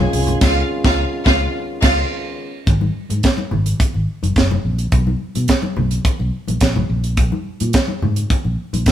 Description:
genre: disco.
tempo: 106 BPM.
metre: 4/4.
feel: straight.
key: G# dorian.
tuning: A4 = 440 Hz.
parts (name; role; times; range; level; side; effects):
dark studio string section; second line; 0.0-2.0 s; E#4 to G#5; -21 LUFS; equal; none.
warm French horn section; sustained chords; 0.0-2.6 s; D#3 to E#4; -24 LUFS; equal; none.
fingered electric bass; bass; 0.0-8.9 s; F#1 to B2; -20 LUFS; equal; none.
tight funk drum kit; drums; 0.1-8.9 s; crash cymbal, hi-hat, kick drum, snare drum; -17 LUFS; right 1 dB; none.
congas; percussion; 0.3-8.9 s; none; -25 LUFS; left 2 dB; none.
room: moderate stone room reverb, RT60 1.3 s.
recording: band playing live in one room.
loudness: -15 LUFS.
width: side -11 dB against mid.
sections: 0.0-2.7 A section; 2.7-8.9 B section.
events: band accent 0.4-2.7.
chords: 0.0 C#9; 2.7 G#sus2; 4.9 N.C.; 6.9 G#sus2.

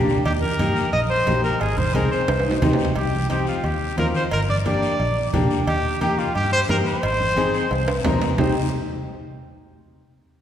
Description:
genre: latin, cumbia.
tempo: 177 BPM.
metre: 4/4.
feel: straight.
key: C minor.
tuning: A4 = 440 Hz.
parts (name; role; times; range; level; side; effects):
mellow electric guitar; second line; 0.0-0.2, 2.5-2.9, 8.4-8.5 s; Eb4 to G4; -28 LUFS; right 1 dB; none.
bright upright piano; accompaniment; 0.0-8.5 s; Bb3 to Bb4; -25 LUFS; left 3 dB; none.
fingered electric bass; bass; 0.0-8.5 s; G1 to G2; -25 LUFS; equal; none.
guiro; percussion; 0.1-8.5 s; none; -37 LUFS; left 5 dB; none.
warm trumpet; melody; 0.3-8.5 s; F4 to Eb5; -24 LUFS; equal; none.
cowbell and timbales; percussion; 0.3-8.5 s; none; -30 LUFS; right 2 dB; none.
congas; percussion; 0.4-8.5 s; none; -27 LUFS; right 2 dB; none.
room: wet concert hall reverb, RT60 2.1 s.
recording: recorded in a church or concert hall.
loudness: -18 LUFS.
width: side -10 dB against mid.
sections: 0.0-3.0 A section; 3.0-8.4 B section; 8.4-9.7 C section.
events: drum fill 2.3-3.0, 7.7-8.4.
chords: 0.3 Eb; 1.6 Ab; 2.3 Cm; 4.3 Gm; 5.7 Eb; 7.0 Ab; 8.4 Cm.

